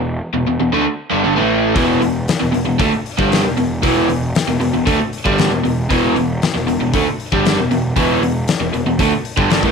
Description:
classic rock; 116 BPM; 4/4; straight; A4 = 442 Hz
overdriven electric guitar; riff; 0.0-9.7 s; E2 to A3; -16 LUFS; equal
fuzz picked electric bass; bass; 0.0-9.7 s; E1 to D2; -22 LUFS; right 1 dB; overdrive
huge arena drum kit; drums; 1.8-9.7 s; hi-hat, kick drum, snare drum; -20 LUFS; left 3 dB
light reverb, studio reverb; 1960s-style stereo; -14 LUFS; side -5 dB against mid
0.0-9.7 A section
0.0 E5
0.21 0.72 1.24 | 1.76 2.28 2.80 3.31 | 3.83 4.35 4.87 5.38 | 5.90 6.42 6.93 7.45 | 7.96 8.48 8.99 9.51

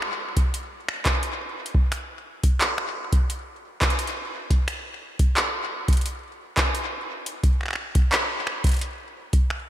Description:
IDM; 87 BPM; 4/4; straight
booming analog drum machine; drums; 0.0-9.6 s; finger snaps, handclaps, hi-hat; -26 LUFS; equal; ping-pong delay
electronic kick drum; drums; 0.4-9.5 s; -21 LUFS; equal
moderate plate reverb, RT60 3.1 s; dreamy mix soaked in reverb; -22 LUFS; side -12 dB against mid
0.0-9.7 A section
0.54 1.23 | 1.92 2.61 3.30 3.99 | 4.68 5.37 6.06 6.75 | 7.44 8.12 8.81 9.51

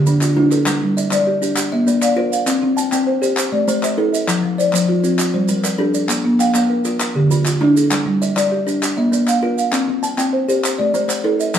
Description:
southern african traditional, mbira-style interlocking cycle; 132 BPM (dotted quarters); 12/8; straight; G equiheptatonic; A4 = 440 Hz
buzzing marimba with soft mallets; arpeggios; 0.0-11.6 s; D3 to G5; -18 LUFS; right 2 dB
kalimba; arpeggios; 0.0-11.6 s; D3 to A5-29c; -18 LUFS; left 3 dB
maracas; percussion; 0.1-11.6 s; -26 LUFS; right 6 dB
group handclap; percussion; 0.2-11.6 s; -26 LUFS; left 2 dB
wet large studio reverb, RT60 0.9 s; band playing live in one room; -15 LUFS; side -9 dB against mid
0.7-11.6 A section
0.0 Dm; 0.7 Gm; 1.6 Bb; 2.5 C5; 3.4 Am; 4.3 F5; 5.2 Gm; 6.1 Bb; 7.0 Dm; 7.9 G5; 8.8 Bb; 9.7 C5; 10.6 Am
0.22 | 0.67 1.12 1.57 2.02 | 2.48 2.93 3.38 3.83 | 4.28 4.74 5.19 5.64 | 6.10 6.55 7.00 7.46 | 7.91 8.37 8.82 9.27 | 9.73 10.18 10.64 11.09 | 11.55

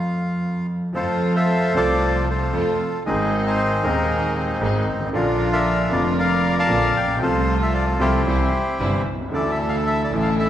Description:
tango; 115 BPM; 4/4; rubato; F major; A4 = 440 Hz
bandoneon; melody; 0.0-10.5 s; C4 to A5; -22 LUFS; left 1 dB
clear baby grand piano; accompaniment; 0.0-10.5 s; Eb1 to A4; -23 LUFS; equal
clear double bass; bass; 0.0-10.5 s; F1 to F2; -24 LUFS; equal
warm chamber string section; stabs; 1.0-10.5 s; G3 to F4; -31 LUFS; right 1 dB
wet recital hall reverb, RT60 1.6 s; recorded in a church or concert hall; -18 LUFS; side -11 dB against mid
1.0-10.5 A section
0.0 F; 3.1 Ab; 5.1 Bb; 7.2 F/C; 8.3 C; 9.3 Dsus2
0.43 | 0.96 1.49 2.02 2.54 | 3.06 3.58 4.10 4.61 | 5.13 5.65 6.17 6.69 | 7.21 7.73 8.25 8.79 | 9.32 9.85 10.38

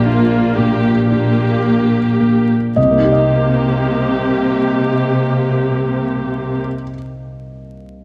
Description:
cinematic, emotional film score for orchestra; 35-40 BPM (dotted quarters); 6/8; rubato; C minor; A4 = 441 Hz
felt-muted upright piano; accompaniment; 0.0-8.0 s; Bb1 to Eb5; -20 LUFS; equal
warm studio viola section; accompaniment; 0.0-6.6 s; Bb3 to G4; -21 LUFS; equal
dark studio cello section; bass; 0.0-6.6 s; Bb2 to C3; -20 LUFS; equal
moderate scoring stage reverb, RT60 1.9 s; vinyl crackle; -15 LUFS; mono
0.0-2.8 A section; 2.8-6.2 B section
slowing down 0.0-2.8
0.0 Gm/Bb; 2.8 Cm7
1.10 | 2.77 4.47

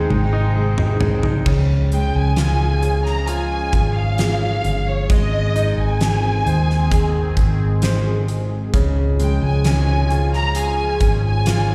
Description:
pop ballad; 66 BPM; 4/4; straight; A4 = 440 Hz
bright studio cello section; second line; 0.0-1.4 s; C4 to Eb4; -36 LUFS; equal; slapback echo, delay
bright concert grand piano; accompaniment; 0.0-11.7 s; Db3 to C5; -28 LUFS; equal; slapback echo
sweeping resonant pad; sustained chords; 0.0-11.7 s; Eb3 to G5; -29 LUFS; equal; chorus
vintage muted fingered electric bass; bass; 0.0-11.7 s; G1 to Eb2; -21 LUFS; equal
huge arena drum kit; drums; 0.1-11.7 s; crash cymbal, hi-hat, kick drum, snare drum, toms; -25 LUFS; equal
warm symphonic violin section; melody; 1.9-11.7 s; Db5 to Bb5; -26 LUFS; equal; slapback echo
light reverb; live gig heard through the venue's PA, recital hall reverb; -18 LUFS; mono
0.0-1.5 A section; 1.5-11.7 B section
drum fill 0.0-1.5
0.0 Ab; 1.5 Db; 5.1 Ab; 8.7 Db
0.56 | 1.46 2.37 3.28 4.19 | 5.10 6.01 6.92 7.83 | 8.74 9.65 10.55 11.46

